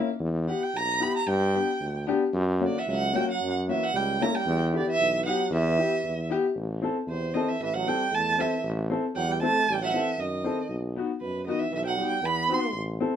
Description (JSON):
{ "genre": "klezmer", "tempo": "115 BPM", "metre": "2/4", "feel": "straight", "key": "E dorian sharp4, A dorian sharp4 from 6.6 s", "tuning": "A4 = 437 Hz", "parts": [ { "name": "warm upright piano", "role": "accompaniment", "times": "0.0-13.1 s", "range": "A#3 to A4", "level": "-28 LUFS", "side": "left 4 dB", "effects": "none" }, { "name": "warm tuba", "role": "bass", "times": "0.2-13.0 s", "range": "A1 to G2", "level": "-29 LUFS", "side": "equal", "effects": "none" }, { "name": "dark violin", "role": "melody", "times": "0.5-12.8 s", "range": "B4 to C6", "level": "-27 LUFS", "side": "right 4 dB", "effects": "none" }, { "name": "warm trombone", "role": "second line", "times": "2.6-12.7 s", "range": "B2 to C4", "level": "-34 LUFS", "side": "right 6 dB", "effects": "none" } ], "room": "moderate studio reverb, RT60 0.6 s", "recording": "minimal, uncompressed stereo recording", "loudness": "-24 LUFS", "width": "side -9 dB against mid", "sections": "0.0-6.6 A section; 6.6-13.2 B section", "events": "speeding up 0.0-13.2", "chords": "0.2 Em; 1.3 G; 2.4 F#; 4.5 Em; 6.6 Am; 10.7 B", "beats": "| 0.22 0.75 | 1.29 1.82 | 2.35 2.88 | 3.41 3.94 | 4.47 5.00 | 5.52 6.04 | 6.57 7.09 | 7.61 8.12 | 8.64 9.16 | 9.67 10.18 | 10.70 11.21 | 11.72 12.22 | 12.73" }